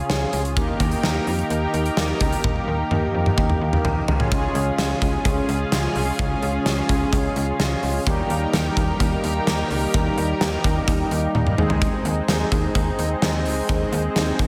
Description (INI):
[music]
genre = synth-pop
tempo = 128 BPM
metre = 4/4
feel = straight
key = unclear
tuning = A4 = 440 Hz
[part]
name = analog synth brass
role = accompaniment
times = 0.0-14.5 s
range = G3 to Ab4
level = -28 LUFS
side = equal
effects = chorus
[part]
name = lush unison pad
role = sustained chords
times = 0.0-14.5 s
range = Db3 to Bb4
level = -28 LUFS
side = equal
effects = chorus
[part]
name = slap-like FM bass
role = bass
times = 0.0-14.5 s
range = C2 to F2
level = -27 LUFS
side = equal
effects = none
[part]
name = gated 80s drum kit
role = drums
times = 0.1-14.5 s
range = hi-hat, kick drum, snare drum, toms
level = -26 LUFS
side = equal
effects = none
[sound]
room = moderate lush hall reverb, RT60 2.2 s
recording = big arena sound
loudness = -21 LUFS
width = mono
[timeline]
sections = 0.0-4.3 A section; 4.3-14.5 B section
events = drum fill 2.4-4.3, 11.3-11.8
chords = 0.0 N.C.; 0.6 Eb; 4.1 Db; 8.1 Eb; 11.6 Ab